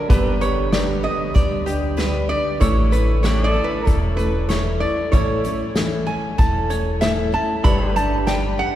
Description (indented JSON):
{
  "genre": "honky-tonk and classic country",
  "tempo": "95 BPM",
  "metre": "4/4",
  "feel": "straight",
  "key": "unclear",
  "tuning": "A4 = 440 Hz",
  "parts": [
    { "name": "lap resonator guitar", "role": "second line", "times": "0.0-8.8 s", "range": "G4 to B5", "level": "-24 LUFS", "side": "right 2 dB", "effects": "none" },
    { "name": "clear upright piano", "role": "accompaniment", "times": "0.0-8.8 s", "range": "B3 to C#6", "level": "-32 LUFS", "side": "right 2 dB", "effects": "none" },
    { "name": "picked steel-string acoustic guitar", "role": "accompaniment", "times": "0.0-8.8 s", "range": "A2 to B4", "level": "-24 LUFS", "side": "left 2 dB", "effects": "none" },
    { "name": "pedal steel guitar", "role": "sustained chords", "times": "0.0-8.8 s", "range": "D3 to E5", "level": "-30 LUFS", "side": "right 2 dB", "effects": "none" },
    { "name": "upright bass", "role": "bass", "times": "0.1-8.6 s", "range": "E1 to D2", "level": "-23 LUFS", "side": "equal", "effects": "none" },
    { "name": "unplugged drum kit", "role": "drums", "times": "0.1-8.4 s", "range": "hi-hat, kick drum, snare drum", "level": "-22 LUFS", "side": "equal", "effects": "none" }
  ],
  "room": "wet cathedral reverb, RT60 5.2 s",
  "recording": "recorded in a church or concert hall",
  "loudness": "-17 LUFS",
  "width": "side -12 dB against mid",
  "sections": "0.0-8.8 A section",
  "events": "resonator guitar played with a steel bar solo 0.0-8.8",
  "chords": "0.1 G; 2.6 A; 7.6 G"
}